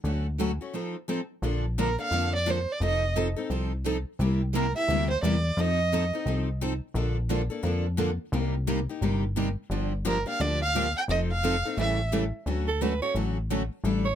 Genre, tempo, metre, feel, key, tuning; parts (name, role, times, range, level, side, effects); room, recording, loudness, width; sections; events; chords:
acoustic string swing (jazz manouche); 174 BPM; 4/4; swing 61% on 8ths; Bb major; A4 = 441 Hz
picked steel-string acoustic guitar; accompaniment; 0.0-14.1 s; C3 to A4; -31 LUFS; left 7 dB
plucky analog bass; bass; 0.0-14.2 s; F1 to F2; -28 LUFS; equal
picked steel-string acoustic guitar; accompaniment; 0.1-14.1 s; C3 to A4; -33 LUFS; right 9 dB
dark violin; melody; 1.8-6.3, 10.1-12.1 s; Bb4 to G5; -28 LUFS; right 3 dB
growling soprano saxophone; second line; 12.7-14.2 s; A4 to C#5; -28 LUFS; right 6 dB
little or no reverb; close, detailed microphones; -25 LUFS; side -10 dB against mid
0.0-1.4 A section; 1.4-12.5 B section; 12.5-14.2 C section
break 0.7-1.4; soprano saxophone solo 12.5-14.2
0.0 Dmaj7; 0.7 F7; 1.4 Bbmaj7; 2.8 F7; 4.2 C7; 5.6 F7; 7.0 Bbmaj7; 8.3 Cm7; 9.7 Gm7; 11.1 F7; 11.8 A7; 12.5 Dmaj7